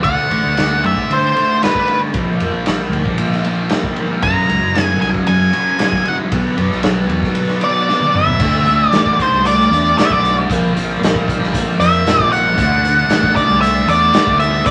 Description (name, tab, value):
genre	psychedelic rock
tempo	115 BPM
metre	4/4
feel	straight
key	unclear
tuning	A4 = 440 Hz
part	octave-fuzz lead guitar	melody	0.0-14.7 s	B4 to A#5	-17 LUFS	equal	distortion
part	overdriven combo organ	sustained chords	0.0-14.7 s	E3 to D5	-28 LUFS	equal	none
part	thick fuzz guitar	riff	0.0-14.7 s	F#2 to D4	-21 LUFS	equal	distortion, phaser
part	fingered electric bass	bass	0.0-14.7 s	F#1 to D3	-23 LUFS	equal	none
part	raw garage drum kit	drums	0.0-14.7 s	crash cymbal, hi-hat, kick drum, ride cymbal, snare drum, toms	-22 LUFS	equal	none
room	wet studio reverb, RT60 0.6 s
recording	vinyl crackle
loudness	-15 LUFS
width	mono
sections	0.0-8.4 A section; 8.4-14.7 B section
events	drum fill 7.9-8.4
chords	0.0 Dsus2; 2.1 Bbadd9; 4.2 F#add9; 6.3 Bm7; 8.4 Dsus2; 10.5 Bbadd9; 12.6 Dsus2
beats	| 0.04 0.56 1.09 1.61 | 2.13 2.65 3.18 3.70 | 4.22 4.75 5.27 5.79 | 6.32 6.84 7.36 7.88 | 8.41 8.93 9.45 9.97 | 10.49 11.01 11.54 12.06 | 12.58 13.10 13.62 14.14 | 14.66